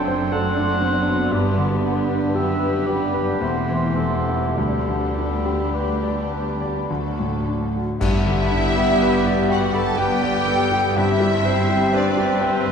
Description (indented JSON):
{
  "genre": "classical, romantic movement for piano and orchestra",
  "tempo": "50-62 BPM",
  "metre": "3/4",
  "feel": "rubato",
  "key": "G major",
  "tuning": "A4 = 438 Hz",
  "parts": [
    { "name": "clear concert grand piano", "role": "melody", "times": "0.0-12.7 s", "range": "D2 to C6", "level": "-23 LUFS", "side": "left 2 dB", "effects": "none" },
    { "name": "warm studio violin section", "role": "melody", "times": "0.0-12.7 s", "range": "D4 to A5", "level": "-30 LUFS", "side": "left 2 dB", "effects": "none" },
    { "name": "bright clarinet", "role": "second line", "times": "0.0-12.7 s", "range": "F#4 to C5", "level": "-30 LUFS", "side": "left 4 dB", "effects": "none" },
    { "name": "mellow cor anglais", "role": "second line", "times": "0.0-12.7 s", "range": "G4 to G5", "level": "-30 LUFS", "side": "right 2 dB", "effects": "none" },
    { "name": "small flute group", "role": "second line", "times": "0.0-12.7 s", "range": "C5 to C6", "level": "-31 LUFS", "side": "right 2 dB", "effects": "none" },
    { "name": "warm studio violin section", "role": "second line", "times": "0.0-12.7 s", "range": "A3 to A4", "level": "-32 LUFS", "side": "left 3 dB", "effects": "none" },
    { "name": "mellow bassoon", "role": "accompaniment", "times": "0.0-12.7 s", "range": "B3 to E4", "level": "-30 LUFS", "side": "right 3 dB", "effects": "none" },
    { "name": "warm studio viola section", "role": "accompaniment", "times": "0.0-12.7 s", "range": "F#3 to C4", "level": "-28 LUFS", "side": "right 1 dB", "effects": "none" },
    { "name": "mellow French horn section", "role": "sustained chords", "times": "0.0-12.7 s", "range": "A3 to G4", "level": "-30 LUFS", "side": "left 1 dB", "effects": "none" },
    { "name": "rich studio cello section", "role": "bass", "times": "0.0-12.7 s", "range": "D2 to G2", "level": "-30 LUFS", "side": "right 3 dB", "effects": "none" },
    { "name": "rich studio double bass section", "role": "bass", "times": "0.0-12.7 s", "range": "E1 to D2", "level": "-29 LUFS", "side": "right 3 dB", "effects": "none" },
    { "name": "mellow trumpet", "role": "stabs", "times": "8.0-12.7 s", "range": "C4 to A4", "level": "-27 LUFS", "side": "right 2 dB", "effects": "none" },
    { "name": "clash cymbals and concert bass drum", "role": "percussion", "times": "8.0-9.9 s", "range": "none", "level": "-28 LUFS", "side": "equal", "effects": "none" }
  ],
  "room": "wet concert hall reverb, RT60 2.3 s",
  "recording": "dark, warm production",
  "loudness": "-18 LUFS",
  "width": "side -6 dB against mid",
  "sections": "0.0-8.0 A section; 8.0-12.7 B section",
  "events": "band accent 8.0-9.0",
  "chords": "0.0 D7/F#; 1.3 G; 3.4 C/E; 4.6 G/D; 6.9 D; 8.0 G; 11.0 C/G"
}